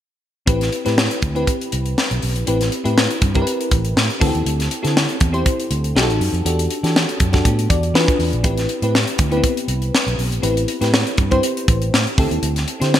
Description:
polished 1980s jazz-funk pop; 120 BPM; 4/4; swing 54% on 16ths; A dorian; A4 = 438 Hz
bell-like FM electric piano; accompaniment; 0.5-13.0 s; B3 to D5; -21 LUFS; left 1 dB; analog chorus
fingered electric bass; bass; 0.5-13.0 s; A1 to E3; -20 LUFS; right 1 dB
tight funk drum kit; drums; 0.5-13.0 s; hi-hat, kick drum, snare drum; -19 LUFS; equal; gated reverb
moderate plate reverb, RT60 2.4 s; bright 1980s-style digital production; -16 LUFS; side -11 dB against mid
0.5-13.0 A section
0.5 Am9; 4.2 D9sus4; 6.0 B7b13; 6.5 Em11; 7.9 E7b9; 8.4 Am9; 12.2 D9sus4
| 0.47 0.97 1.47 1.97 | 2.46 2.96 3.46 3.96 | 4.46 4.96 5.46 5.96 | 6.45 6.95 7.45 7.95 | 8.45 8.94 9.44 9.94 | 10.44 10.94 11.43 11.93 | 12.43 12.93

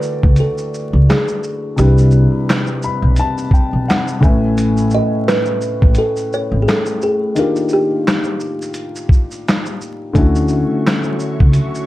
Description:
lo-fi hip hop; 86 BPM; 4/4; swing 56% on 16ths; A4 = 440 Hz
kalimba; melody; 0.0-8.4 s; G4 to Eb5; -19 LUFS; right 1 dB; low-pass filter
dark upright piano; accompaniment; 0.0-11.9 s; A2 to B5; -19 LUFS; left 2 dB; cassette tape, low-pass filter
lo-fi sampler-style drum kit; drums; 0.0-11.9 s; handclaps, hi-hat, kick drum, shaker, snare drum; -15 LUFS; equal
upright bass; bass; 0.2-11.5 s; G#1 to D2; -14 LUFS; equal
string machine, cellos; sustained chords; 10.2-11.9 s; F#4 to C#6; -28 LUFS; right 1 dB; ensemble chorus, low-pass filter
light reverb; dark, warm production, vinyl crackle; -13 LUFS; side -16 dB against mid
0.0-11.9 A section
upright piano fill 2.5-4.6
0.0 Dmaj9; 1.8 Cmaj9; 4.2 Amaj9; 7.4 Ebmaj9; 10.2 Dmaj9
0.39 1.08 | 1.78 2.48 3.18 3.87 | 4.57 5.27 5.97 6.67 | 7.36 8.06 8.76 9.46 | 10.15 10.85 11.55

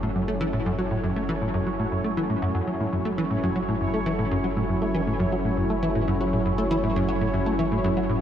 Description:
ambient, sequencer-driven space music; 119 BPM; 4/4; straight; F# minor; A4 = 441 Hz
sweeping resonant pad; sustained chords; 0.0-8.2 s; F#3 to A4; -27 LUFS; equal; chorus
plucky analog bass; riff; 0.0-8.2 s; F#2 to A3; -25 LUFS; equal; lush chorus, analog delay
warm sub bass; bass; 0.0-8.2 s; F#1; -34 LUFS; equal
bubbling stepped-filter texture; texture; 0.0-8.2 s; C#5; -35 LUFS; right 2 dB; chorus, built-in reverb
moderate huge ambient reverb, RT60 8.0 s; in a vast, echoing space; -22 LUFS; side -10 dB against mid
0.0-8.2 A section
fade-in on analog synth pad 0.0-8.2; fade-in on synth texture 0.0-8.2
0.0 F#m7
0.03 | 0.53 1.04 1.54 2.04 | 2.55 3.05 3.56 4.06 | 4.57 5.07 5.57 6.08 | 6.58 7.09 7.59 8.09

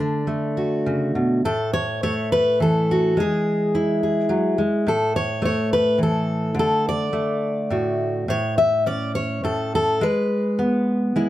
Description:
folk, solo fingerstyle acoustic guitar; 105 BPM; 3/4; rubato; A major; A4 = 440 Hz
fingerpicked steel-string acoustic guitar; solo; 0.0-11.3 s; A2 to E5; -19 LUFS; equal
light reverb; -19 LUFS; side -14 dB against mid
0.0-1.4 A section; 1.4-11.3 B section
0.0 D; 1.4 A5; 3.2 E; 4.9 A5; 6.6 D; 8.3 A; 10.0 E/G# (rootless)
0.27 0.85 | 1.44 2.02 2.60 | 3.18 3.75 4.31 | 4.87 5.43 6.00 | 6.56 7.13 7.71 | 8.29 8.86 9.44 | 10.02 10.59 11.15

